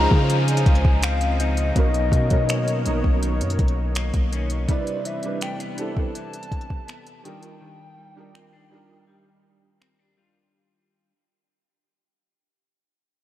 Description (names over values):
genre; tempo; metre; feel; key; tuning
contemporary R&B; 82 BPM; 4/4; straight; unclear; A4 = 440 Hz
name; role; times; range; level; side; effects
hollow clarinet-like synth lead; melody; 0.0-9.8 s; D5 to Bb5; -29 LUFS; left 3 dB; chorus, phaser, analog delay
clear grand piano; accompaniment; 0.0-10.6 s; Gb3 to C5; -29 LUFS; right 3 dB; ensemble chorus
warm analog pad; sustained chords; 0.0-4.7 s; Cb3 to F5; -32 LUFS; equal; chorus, sidechain pumping
clean electric guitar; arpeggios; 0.0-11.1 s; Cb3 to F4; -34 LUFS; left 5 dB; analog chorus, analog delay
long sustained 808-style bass; bass; 0.0-4.7 s; Bb1 to Db3; -22 LUFS; equal; none
downlifter; sound effects; 0.0-4.7 s; none; -35 LUFS; equal; none
smooth R&B drum kit; drums; 0.1-10.0 s; finger snaps, hi-hat, kick drum; -22 LUFS; equal; none
room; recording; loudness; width
moderate huge ambient reverb, RT60 8.3 s; dreamy mix soaked in reverb; -19 LUFS; side -13 dB against mid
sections
0.0-10.5 A section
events
fade-out 0.0-10.5; break 7.6-10.5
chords
0.0 Dbmaj9; 1.8 Cbmaj9; 4.7 Cmaj9; 7.2 Ebmaj9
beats
0.29 1.03 | 1.76 2.49 3.22 3.95 | 4.68 5.42 6.15 6.88 | 7.61 8.34 9.07 9.81